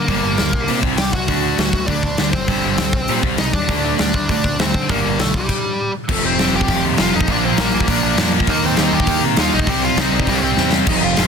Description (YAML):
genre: punk rock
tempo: 200 BPM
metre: 4/4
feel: straight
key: unclear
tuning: A4 = 440 Hz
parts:
  - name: bluesy overdriven lead guitar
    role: melody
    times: 0.0-11.3 s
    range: G3 to G5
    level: -22 LUFS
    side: equal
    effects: distortion
  - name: growling picked electric bass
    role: bass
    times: 0.0-11.3 s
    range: F1 to D3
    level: -25 LUFS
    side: equal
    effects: overdrive
  - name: overdriven semi-hollow guitar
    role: riff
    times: 0.1-11.3 s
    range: F2 to Eb4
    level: -22 LUFS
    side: right 14 dB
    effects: none
  - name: tight distorted guitar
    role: riff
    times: 0.1-11.3 s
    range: F2 to Eb4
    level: -23 LUFS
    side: left 15 dB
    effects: distortion
  - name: big rock drum kit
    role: drums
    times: 0.1-11.2 s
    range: crash cymbal, hi-hat, kick drum, snare drum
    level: -19 LUFS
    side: left 1 dB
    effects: none
  - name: distorted electric guitar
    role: riff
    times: 6.1-11.3 s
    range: F2 to Eb4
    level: -25 LUFS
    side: equal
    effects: distortion
room: little or no reverb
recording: dense, heavily limited modern master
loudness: -15 LUFS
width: side -6 dB against mid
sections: 0.0-6.1 A section; 6.1-11.3 B section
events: stop 5.5-6.1; drum fill 10.6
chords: 0.1 Gm; 0.5 C5; 1.3 D; 2.5 G5; 2.9 Cm; 3.7 D5; 4.9 Gm; 5.3 C5; 6.1 F; 7.3 Bb; 8.5 Eb; 9.7 Cm